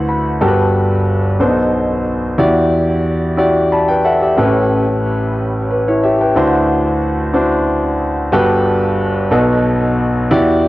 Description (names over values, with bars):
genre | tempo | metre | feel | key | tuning
gospel | 60 BPM (dotted quarters) | 6/8 | straight | G major | A4 = 437 Hz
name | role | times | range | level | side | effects
clear concert grand piano | solo | 0.0-10.7 s | G1 to B5 | -12 LUFS | equal | cassette tape
room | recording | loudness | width
moderate small room reverb, RT60 0.5 s | home recording on cassette | -12 LUFS | side -17 dB against mid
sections
0.0-8.3 A section; 8.3-10.7 B section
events
grand piano fill 0.0-0.4, 3.4-4.4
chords
0.4 Gmaj9; 1.4 B7b9; 2.4 Em9; 4.4 A9; 6.3 D9; 8.3 Gmaj9; 9.3 B7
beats
| 0.39 1.39 | 2.38 3.37 | 4.37 5.36 | 6.35 7.34 | 8.33 9.32 | 10.31